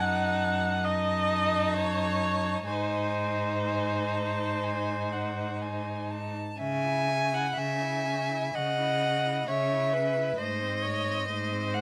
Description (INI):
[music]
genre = classical, slow romantic movement for string quartet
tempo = 60-75 BPM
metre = 4/4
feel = rubato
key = C# minor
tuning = A4 = 440 Hz
[part]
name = warm violin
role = melody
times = 0.0-11.8 s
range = D#5 to A5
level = -35 LUFS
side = equal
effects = none
[part]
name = warm violin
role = second line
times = 0.0-11.8 s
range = D#4 to G#5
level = -34 LUFS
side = equal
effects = none
[part]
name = rich viola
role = accompaniment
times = 0.0-11.8 s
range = A3 to F#5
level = -35 LUFS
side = equal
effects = none
[part]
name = clear cello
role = bass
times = 0.0-11.8 s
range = F#2 to C#3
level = -35 LUFS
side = equal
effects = none
[sound]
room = light reverb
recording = none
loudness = -29 LUFS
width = mono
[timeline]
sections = 0.0-6.6 A section; 6.6-11.8 B section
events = none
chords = 0.0 D#dim/F#; 2.7 G#; 6.6 C#m; 10.4 G#